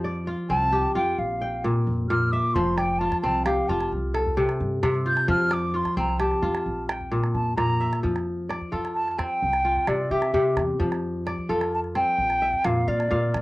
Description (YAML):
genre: west african traditional, West African string and xylophone music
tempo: 87 BPM (dotted quarters)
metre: 12/8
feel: straight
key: F major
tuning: A4 = 440 Hz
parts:
  - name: kora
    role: arpeggios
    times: 0.0-13.4 s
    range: Bb2 to G5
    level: -25 LUFS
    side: left 1 dB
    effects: cassette tape
  - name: upright bass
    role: bass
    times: 0.0-13.4 s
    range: F1 to C3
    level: -32 LUFS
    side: equal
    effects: none
  - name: mellow hollow silver concert flute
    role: melody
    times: 0.5-13.4 s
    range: D5 to G6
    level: -24 LUFS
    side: equal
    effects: cassette tape
  - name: calabash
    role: percussion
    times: 2.5-13.4 s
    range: none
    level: -32 LUFS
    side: right 2 dB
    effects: none
room: light reverb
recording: home recording on cassette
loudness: -22 LUFS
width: side -20 dB against mid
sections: 0.0-8.0 A section; 8.0-13.4 B section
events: flute solo 0.0-8.0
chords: 0.0 F; 1.2 Bb5; 2.5 F5; 3.9 C5; 5.3 F; 6.7 Bb5; 8.0 F; 9.4 C; 10.8 F; 12.2 Bb